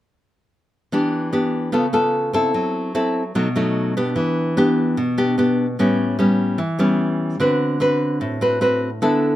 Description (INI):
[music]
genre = bossa nova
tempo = 148 BPM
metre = 4/4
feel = straight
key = E minor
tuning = A4 = 440 Hz
[part]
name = nylon-string guitar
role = solo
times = 0.9-9.4 s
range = A2 to B4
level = -17 LUFS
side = equal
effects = none
[sound]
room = light reverb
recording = close, detailed microphones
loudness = -17 LUFS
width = side -14 dB against mid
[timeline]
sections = 0.9-4.2 A section; 4.2-9.4 B section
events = none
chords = 0.9 Em7; 1.7 C#7alt; 2.5 F#m7b5; 3.4 B7; 4.2 Em7; 5.8 A9; 7.4 D6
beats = | 0.93 1.33 1.74 2.14 | 2.55 2.95 3.35 3.76 | 4.16 4.57 4.97 5.38 | 5.78 6.19 6.59 7.00 | 7.40 7.81 8.21 8.62 | 9.02